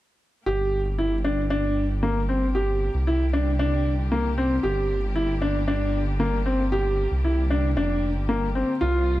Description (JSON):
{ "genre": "piano and strings electronica", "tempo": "115 BPM", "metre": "4/4", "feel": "straight", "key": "G dorian", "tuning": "A4 = 440 Hz", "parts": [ { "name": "clear studio string section", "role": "sustained chords", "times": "0.5-9.2 s", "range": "C3 to G4", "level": "-38 LUFS", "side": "left 1 dB", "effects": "none" }, { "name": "warm upright piano", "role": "riff", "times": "0.5-9.1 s", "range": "Bb3 to G4", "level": "-24 LUFS", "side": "equal", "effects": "tape echo" }, { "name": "dark detuned saw bass", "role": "bass", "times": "0.5-9.2 s", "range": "F1 to C2", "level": "-25 LUFS", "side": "equal", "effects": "none" } ], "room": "moderate recital hall reverb, RT60 1.6 s, small room ambience", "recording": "none", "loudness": "-21 LUFS", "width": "side -15 dB against mid", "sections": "0.5-9.2 A section", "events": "none", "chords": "0.5 Gm" }